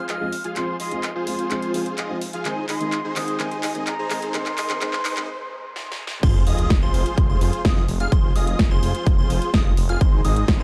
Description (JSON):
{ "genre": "EDM, festival progressive house", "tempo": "127 BPM", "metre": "4/4", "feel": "straight", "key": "F minor", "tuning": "A4 = 440 Hz", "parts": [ { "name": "concert flute", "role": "melody", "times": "0.0-5.8 s", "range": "Ab5 to F6", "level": "-33 LUFS", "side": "equal", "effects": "delay" }, { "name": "dense compressed supersaw", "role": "riff", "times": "0.0-10.6 s", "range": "Eb4 to F5", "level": "-31 LUFS", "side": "equal", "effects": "vintage 12-bit sampler grit, sidechain pumping, low-pass filter" }, { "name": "riser and sub drop", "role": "sound effects", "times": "1.2-8.1 s", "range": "none", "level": "-35 LUFS", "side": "equal", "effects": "none" }, { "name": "big-room dance drum kit", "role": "drums", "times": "0.1-10.6 s", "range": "crash cymbal, handclaps, hi-hat, snare drum", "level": "-30 LUFS", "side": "equal", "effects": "high-pass filter on hats, high-pass filter on snare, high-pass filter on cymbals, high-pass filter on room" }, { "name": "warm grand piano", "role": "accompaniment", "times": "0.2-5.3 s", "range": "Eb3 to F4", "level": "-33 LUFS", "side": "equal", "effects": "sidechain pumping" }, { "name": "plucky unison lead", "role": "arpeggios", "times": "6.2-10.6 s", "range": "C6 to F6", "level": "-33 LUFS", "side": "equal", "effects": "phaser, sidechain pumping, delay" }, { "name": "detuned saw bass", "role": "bass", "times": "6.2-10.6 s", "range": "F1 to Ab1", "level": "-25 LUFS", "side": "equal", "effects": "sidechain pumping" }, { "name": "electronic kick drum", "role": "drums", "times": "6.2-10.6 s", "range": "none", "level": "-21 LUFS", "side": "equal", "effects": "overdrive" } ], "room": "light reverb, digital ambience", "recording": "dark, warm production, high-pass filter", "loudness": "-22 LUFS", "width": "mono", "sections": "0.0-6.2 A section; 6.2-10.6 B section", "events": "build-up 0.0-6.2; drum fill 0.0-5.3, 5.8-6.2; break 5.3-6.2; drop 6.2-10.6; impact 6.2-8.1", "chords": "0.0 Fm; 2.5 Ab; 6.2 Fm; 10.0 Ab", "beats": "0.09 | 0.56 1.03 1.51 1.98 | 2.45 2.92 3.40 3.87 | 4.34 4.82 5.29 5.76 | 6.23 6.71 7.18 7.65 | 8.12 8.59 9.07 9.54 | 10.01 10.48" }